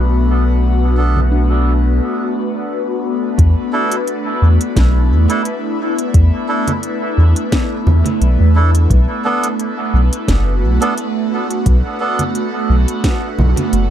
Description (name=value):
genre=ambient dub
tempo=87 BPM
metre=4/4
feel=swing 54% on 16ths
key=B minor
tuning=A4 = 438 Hz
part: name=airy breathy pad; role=sustained chords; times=0.0-13.9 s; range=A3 to B4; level=-19 LUFS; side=equal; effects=chorus, phaser, vintage 12-bit sampler grit
part: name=soft dub sub bass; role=bass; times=0.0-13.9 s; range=F#1 to E2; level=-11 LUFS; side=equal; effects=none
part: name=bubbling stepped-filter texture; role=texture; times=0.0-2.0 s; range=E5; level=-38 LUFS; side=right 8 dB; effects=none
part: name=melodica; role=stabs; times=1.0-12.2 s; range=B3 to A4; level=-22 LUFS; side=right 3 dB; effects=dub echo
part: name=organic electronic drum kit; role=drums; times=1.2-13.9 s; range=congas, hi-hat, snare drum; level=-22 LUFS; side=right 1 dB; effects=overdrive, low-pass filter on perc, low-pass filter on hats, low-pass filter on snare, low-pass filter on room, dub echo
part: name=handpan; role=arpeggios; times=1.3-2.0 s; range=D4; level=-27 LUFS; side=left 2 dB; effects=analog delay
part: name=electronic kick drum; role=drums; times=3.4-13.2 s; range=none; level=-16 LUFS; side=equal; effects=overdrive
room=digital ambience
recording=echo-heavy mix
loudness=-13 LUFS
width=side -10 dB against mid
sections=0.0-3.4 A section; 3.4-13.9 B section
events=filter sweep on analog synth pad 0.0-3.4; break 2.0-3.4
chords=0.0 Bm7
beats=| 0.62 1.31 2.00 2.69 | 3.38 4.07 4.76 5.45 | 6.14 6.83 7.52 8.21 | 8.90 9.59 10.28 10.97 | 11.66 12.35 13.04 13.73